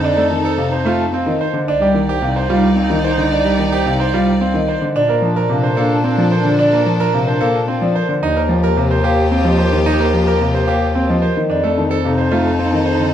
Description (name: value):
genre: classical, minimalist pattern music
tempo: 110 BPM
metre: 3/4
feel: straight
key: Bb major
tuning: A4 = 440 Hz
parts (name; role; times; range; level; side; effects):
- marimba with medium mallets; melody; 0.0-13.1 s; Bb4 to A5; -22 LUFS; left 4 dB; none
- dark clarinet; second line; 0.0-13.1 s; D4 to G4; -24 LUFS; right 4 dB; none
- clear concert grand piano; accompaniment; 0.0-13.1 s; C3 to C4; -18 LUFS; equal; none
- clear chamber violin section; sustained chords; 0.0-13.1 s; D4 to D5; -26 LUFS; left 4 dB; none
- bright concert grand piano; arpeggios; 0.0-13.0 s; C4 to C5; -20 LUFS; right 6 dB; none
- clear bass clarinet; bass; 0.0-13.1 s; C2 to Bb2; -20 LUFS; left 2 dB; none
room: moderate recital hall reverb, RT60 1.7 s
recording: dark, warm production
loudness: -13 LUFS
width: side -10 dB against mid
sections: 0.0-13.1 A section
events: none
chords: 0.0 F7; 1.7 Cmadd9; 5.0 Bbmaj7; 8.2 Ebadd9; 11.5 F7